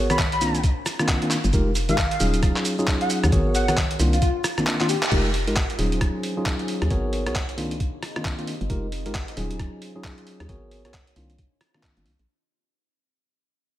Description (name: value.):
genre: UK garage, two-step garage.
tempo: 134 BPM.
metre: 4/4.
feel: swing 61% on 16ths.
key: unclear.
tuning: A4 = 440 Hz.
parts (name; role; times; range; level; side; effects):
mellow tine electric piano; stabs; 0.0-12.1 s; Eb3 to Db5; -26 LUFS; equal; vintage 12-bit sampler grit, diffuse ambient delay.
hollow knocking FM bass; bass; 0.0-12.3 s; Eb1 to Eb2; -25 LUFS; equal; sidechain pumping.
airy dreamy lead; melody; 0.1-5.1 s; F4 to Cb6; -28 LUFS; left 1 dB; chorus, diffuse ambient delay.
boom bap sampler-style drum kit; drums; 0.1-12.3 s; congas, crash cymbal, handclaps, hi-hat, rim click, shaker; -26 LUFS; equal; none.
electronic kick drum; drums; 0.2-11.9 s; none; -24 LUFS; equal; none.
deep dark ambient pad; texture; 5.7-12.3 s; C4 to Eb5; -41 LUFS; equal; chorus, built-in reverb, sidechain pumping.
room: light reverb.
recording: none.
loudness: -21 LUFS.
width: side -13 dB against mid.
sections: 0.0-5.1 A section; 5.1-12.3 B section.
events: drum fill 4.8-5.1; band accent 5.0; fade-out on ambient pad 5.1-12.3; fade-out 5.1-12.3.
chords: 0.4 Cm11; 1.5 Fm11; 2.2 Ebm11; 3.3 Abm11; 4.0 Cm11; 5.1 Fm11; 5.8 Ebm11; 6.9 Abm11; 7.6 Cm11; 8.7 Fm11; 9.4 Ebm11; 10.5 Abm11; 11.2 Cm11.